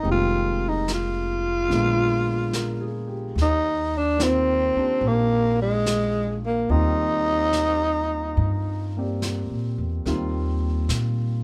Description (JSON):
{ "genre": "jazz ballad", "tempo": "72 BPM", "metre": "4/4", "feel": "swing 68% on 8ths", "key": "Eb major", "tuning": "A4 = 439 Hz", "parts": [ { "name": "growling tenor saxophone", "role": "melody", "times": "0.0-9.2 s", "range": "Ab3 to F4", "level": "-25 LUFS", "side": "equal", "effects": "none" }, { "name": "warm concert grand piano", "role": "accompaniment", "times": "0.0-11.4 s", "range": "D3 to D5", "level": "-32 LUFS", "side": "equal", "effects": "none" }, { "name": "upright bass", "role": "bass", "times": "0.0-11.4 s", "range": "F1 to Bb2", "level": "-28 LUFS", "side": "equal", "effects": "none" }, { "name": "vintage brush drum kit", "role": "drums", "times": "0.1-11.4 s", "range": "brushed snare drum, hi-hat, snare drum", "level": "-35 LUFS", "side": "equal", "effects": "none" } ], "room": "moderate club reverb, RT60 0.6 s", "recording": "none", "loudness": "-23 LUFS", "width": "mono", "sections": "0.0-10.1 A section; 10.1-11.4 B section", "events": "none", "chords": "0.1 Fm11; 1.7 Bb7b9; 3.4 Eb6", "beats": "| 0.05 0.88 1.71 2.54 | 3.37 4.19 5.02 5.86 | 6.69 7.53 8.37 9.22 | 10.07 10.90" }